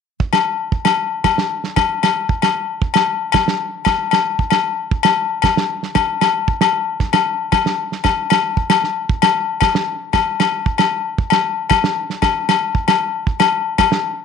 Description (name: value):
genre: highlife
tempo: 115 BPM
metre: 4/4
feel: straight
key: none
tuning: none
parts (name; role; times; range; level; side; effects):
- damped 70s drum kit; drums; 0.2-14.0 s; kick drum, snare drum; -19 LUFS; right 6 dB; none
- agogo bells; percussion; 0.3-13.9 s; none; -16 LUFS; left 10 dB; none
room: light reverb, small room reverb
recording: 1960s-style stereo with parts hard left and right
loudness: -15 LUFS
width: side -6 dB against mid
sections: 0.2-14.2 A section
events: none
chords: none